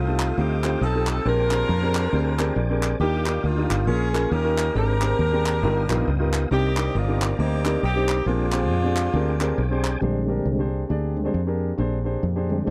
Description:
uptempo gospel; 137 BPM; 4/4; swing 60% on 8ths; A4 = 444 Hz
clear saxophone section; melody; 0.0-9.8 s; Ab3 to Bb4; -28 LUFS; equal
tonewheel organ; sustained chords; 0.0-12.7 s; D3 to Eb6; -35 LUFS; equal; slow rotary speaker, overdrive, chorus vibrato
fingered electric bass; bass; 0.0-12.7 s; G1 to F2; -26 LUFS; equal
dark concert grand piano; accompaniment; 0.1-12.7 s; G2 to D5; -29 LUFS; equal
group handclap; percussion; 0.2-9.9 s; -32 LUFS; equal
mellow French horn section; sustained chords; 10.0-12.7 s; Bb3 to G4; -40 LUFS; equal
little or no reverb; dry, close 1970s-style studio recording; -23 LUFS; mono
0.0-10.0 A section; 10.0-12.7 B section
grand piano fill 2.3-3.0; tonewheel organ solo 10.0-12.7
0.0 F9; 1.3 Bb13; 3.0 Ebmaj9; 3.9 Bbm7; 4.3 Eb9; 4.8 Abmaj9#11; 5.6 G7alt; 6.5 Cm9; 8.3 Bb13

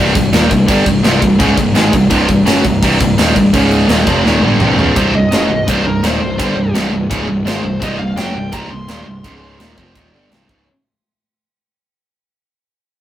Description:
heavy metal; 168 BPM; 4/4; straight; A4 = 442 Hz
distorted electric guitar; riff; 0.0-10.7 s; C2 to Ab3; -16 LUFS; right 3 dB; overdrive
heavy high-gain guitar; riff; 0.0-10.7 s; C2 to Ab3; -16 LUFS; left 3 dB; distortion
fuzz picked electric bass; bass; 0.0-10.7 s; C1 to Ab1; -19 LUFS; equal; overdrive
tight metal drum kit; drums; 0.2-10.6 s; crash cymbal, kick drum, ride cymbal, snare drum, toms; -17 LUFS; equal
bluesy overdriven lead guitar; melody; 5.0-9.7 s; Bb4 to C6; -22 LUFS; equal; distortion
moderate studio reverb, RT60 0.6 s; rough rehearsal-room recording, warm saturation; -10 LUFS; side -12 dB against mid
0.0-5.0 A section; 5.0-10.7 B section
drum fill 4.2-5.0; fade-out 5.0-10.7; lead electric guitar solo 5.0-10.7
0.0 Cm; 3.5 Db5; 3.9 Cm; 9.2 Db5; 9.6 Cm

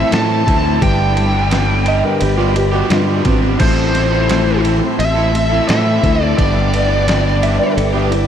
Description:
folk rock and heartland rock; 86 BPM; 4/4; straight; A4 = 441 Hz
bluesy overdriven lead guitar; melody; 0.0-7.7 s; C5 to A5; -19 LUFS; equal; distortion
picked plugged-in steel-string acoustic guitar; accompaniment; 0.0-8.3 s; G2 to B4; -20 LUFS; left 4 dB; wide subtle chorus
rich symphonic string section; sustained chords; 0.0-8.3 s; G4 to D6; -29 LUFS; equal
crunchy overdriven guitar; riff; 0.0-8.1 s; G2 to A4; -21 LUFS; right 1 dB; lush chorus
modern bright fingered electric bass; bass; 0.0-8.3 s; G1 to A2; -17 LUFS; equal
dusty soul sampler-style drum kit; drums; 0.1-8.3 s; crash cymbal, kick drum, ride cymbal, snare drum; -21 LUFS; equal; overdrive
electric slide guitar; second line; 1.9-8.3 s; C4 to E5; -21 LUFS; right 3 dB; analog delay
wet cathedral reverb, RT60 5.5 s; dreamy mix soaked in reverb; -12 LUFS; side -9 dB against mid
0.0-8.3 A section
0.0 Am; 0.8 G; 3.6 Am; 6.4 G

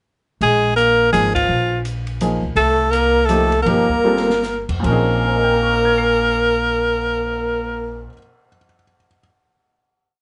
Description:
modal jazz; 142-168 BPM; 3/4; swing 63% on 8ths; Bb dorian; A4 = 442 Hz
bright alto saxophone; melody; 0.4-8.1 s; F4 to Bb4; -19 LUFS; equal
clear trombone; second line; 0.4-8.1 s; F3 to Bb3; -25 LUFS; equal
upright bass; bass; 0.4-8.1 s; G1 to F2; -26 LUFS; equal
open jazz drum kit; drums; 0.4-7.3 s; crash cymbal, cymbal swell, hi-hat, kick drum, ride cymbal, snare drum; -33 LUFS; equal
warm baby grand piano; accompaniment; 1.1-9.2 s; Bb2 to C7; -25 LUFS; equal
light reverb; nothing above 10.8 kHz; -17 LUFS; mono
0.4-4.8 A section; 4.8-7.4 final chord
band accent 1.3; slowing down 2.6-4.8; drum fill 4.0-4.4
0.4 Bb7(no3); 2.6 Cm7; 4.8 Bbm11

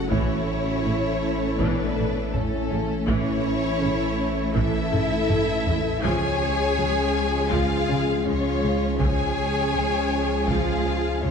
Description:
cinematic, hybrid orchestral and electronic film score; 81 BPM; 4/4; straight; A4 = 440 Hz
warm symphonic violin section; melody; 0.0-11.3 s; A4 to G#5; -29 LUFS; left 4 dB
dark symphonic violin section; second line; 0.0-11.3 s; C#4 to C#5; -30 LUFS; left 3 dB
warm symphonic viola section; accompaniment; 0.0-11.3 s; C#3 to A3; -32 LUFS; right 1 dB
airy breathy pad; sustained chords; 0.0-11.3 s; E3 to A4; -32 LUFS; equal; chorus
clear trombone section; sustained chords; 0.0-11.3 s; E3 to A3; -35 LUFS; right 2 dB
mellow French horn section; sustained chords; 0.0-11.3 s; C#4 to C#5; -32 LUFS; left 4 dB
dark detuned saw bass; bass; 0.0-11.3 s; F#1 to C#2; -30 LUFS; equal
warm symphonic cello section; bass; 0.0-11.3 s; A3 to G#4; -30 LUFS; right 3 dB
thumb-piano-like synth pluck; arpeggios; 0.1-11.3 s; C#3 to A4; -34 LUFS; equal
warm symphonic double bass section; bass; 0.1-11.3 s; A1 to C#2; -30 LUFS; right 4 dB
taiko ensemble; drums; 0.1-11.3 s; -29 LUFS; equal
wet scoring stage reverb, RT60 1.6 s; dark, warm production, nothing above 10.9 kHz; -21 LUFS; side -6 dB against mid
0.0-11.3 A section
drum fill 4.9-6.0
0.1 A; 6.0 C#

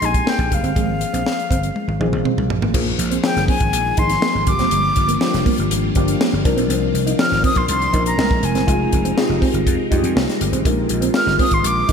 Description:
polished 1980s jazz-funk pop; 121 BPM; 4/4; straight; A4 = 442 Hz
breathy concert flute; melody; 0.0-11.9 s; F5 to F6; -21 LUFS; left 1 dB; ping-pong delay
tine electric piano; accompaniment; 0.0-11.9 s; F3 to Bb4; -22 LUFS; left 3 dB; lush chorus
mellow electric guitar; riff; 0.0-11.9 s; G3 to F4; -26 LUFS; right 4 dB; lush chorus
vintage slap bass; bass; 0.0-11.9 s; F1 to F2; -22 LUFS; right 1 dB
tight funk drum kit; drums; 0.0-11.9 s; crash cymbal, hi-hat, kick drum, snare drum, toms; -21 LUFS; equal; gated reverb
phased string machine; sustained chords; 2.7-11.9 s; C3 to D5; -27 LUFS; equal; ensemble chorus, phaser
moderate lush hall reverb, RT60 1.9 s, small room ambience; bright 1980s-style digital production; -15 LUFS; side -6 dB against mid
0.0-2.7 A section; 2.7-11.9 B section
drum fill 1.8-2.7
0.0 Fm11; 0.8 Ab69; 2.7 Bb7sus4; 4.5 Gm7; 6.5 Cm11; 8.2 C7b13; 8.7 Fm9; 10.7 Bb7sus4

